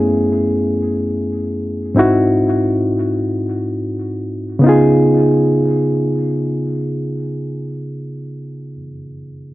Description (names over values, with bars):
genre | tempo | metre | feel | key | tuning
soul | free time | none | none | C# minor | A4 = 441 Hz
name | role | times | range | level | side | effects
barky reed electric piano | solo | 0.0-9.5 s | F#2 to G#4 | -15 LUFS | equal | tape echo
room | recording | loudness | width
light reverb | dark, warm production | -14 LUFS | side -17 dB against mid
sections
0.0-4.6 A section; 4.6-7.3 B section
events
none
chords
0.0 F#m11; 2.0 G#7b13; 4.6 C#7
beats
free time